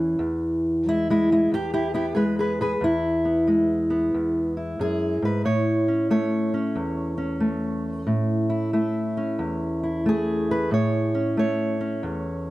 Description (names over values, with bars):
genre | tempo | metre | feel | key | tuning
acoustic country blues, solo or duo | 91 BPM | 4/4 | swing 65% on 8ths | unclear | A4 = 439 Hz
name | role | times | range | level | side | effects
fingerpicked steel-string acoustic guitar | solo | 0.0-12.5 s | E2 to C#5 | -21 LUFS | equal | none
room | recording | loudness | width
light reverb | close, detailed microphones | -21 LUFS | side -17 dB against mid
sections
0.0-12.5 A section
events
none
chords
0.2 E; 5.5 A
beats
| 0.20 0.86 1.52 2.17 | 2.83 3.48 4.14 4.80 | 5.45 6.11 6.77 7.42 | 8.08 8.74 9.40 10.06 | 10.72 11.39 12.05